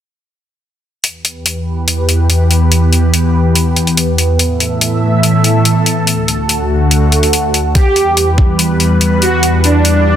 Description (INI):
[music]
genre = heavy wobble dubstep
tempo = 143 BPM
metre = 4/4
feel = half-time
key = E minor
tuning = A4 = 441 Hz
[part]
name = lush unison pad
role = sustained chords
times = 1.0-10.2 s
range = D2 to E5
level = -11 LUFS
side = equal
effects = chorus, phaser, sidechain pumping
[part]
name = electronic hi-hat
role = drums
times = 1.0-9.9 s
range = none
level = -14 LUFS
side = left 2 dB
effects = overdrive
[part]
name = soft supersaw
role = melody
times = 7.8-10.2 s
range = D4 to G4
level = -14 LUFS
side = right 2 dB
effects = dub echo
[part]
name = electronic kick drum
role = drums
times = 7.8-8.5 s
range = none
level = -10 LUFS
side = equal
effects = overdrive
[sound]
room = moderate lush hall reverb, RT60 1.9 s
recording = dense, heavily limited modern master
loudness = -10 LUFS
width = side -10 dB against mid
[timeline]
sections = 1.0-10.2 A section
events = filter sweep on analog synth pad 1.0-10.2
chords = 1.0 Em; 4.4 Asus2; 6.1 D; 7.8 Em